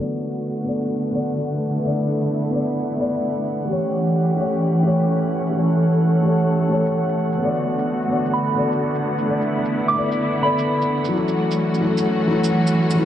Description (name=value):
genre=future garage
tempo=129 BPM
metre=4/4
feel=swing 66% on 16ths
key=B minor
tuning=A4 = 440 Hz
part: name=felt-muted upright piano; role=accompaniment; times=0.0-13.1 s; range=F#3 to D5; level=-23 LUFS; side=left 2 dB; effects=tape echo
part: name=muted studio string section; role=sustained chords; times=0.0-13.1 s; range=D3 to A4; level=-20 LUFS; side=right 1 dB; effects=none
part: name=drifting glass-harmonics texture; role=texture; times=0.4-13.1 s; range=F#5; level=-34 LUFS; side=right 6 dB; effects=chorus, built-in reverb
part: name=shaker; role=drums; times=0.1-13.0 s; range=none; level=-39 LUFS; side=right 4 dB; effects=overdrive, low-pass filter on perc, low-pass filter on snare, low-pass filter on cymbals, low-pass filter on room
part: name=soft synth bell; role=melody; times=8.3-11.1 s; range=B5 to D6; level=-26 LUFS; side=right 3 dB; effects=chorus, phaser, digital delay
room=moderate huge ambient reverb, RT60 7.9 s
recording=vinyl crackle, low-pass filter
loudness=-18 LUFS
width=side -10 dB against mid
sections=0.0-13.1 A section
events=filter sweep on drum 0.0-13.1; filter sweep 0.0-13.1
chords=0.0 Bm7; 3.7 A7; 7.4 Bm7; 11.1 F#m7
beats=0.43 0.89 1.36 | 1.82 2.29 2.75 3.22 | 3.68 4.15 4.61 5.08 | 5.54 6.01 6.47 6.94 | 7.41 7.87 8.34 8.80 | 9.27 9.73 10.20 10.66 | 11.13 11.59 12.06 12.52 | 12.99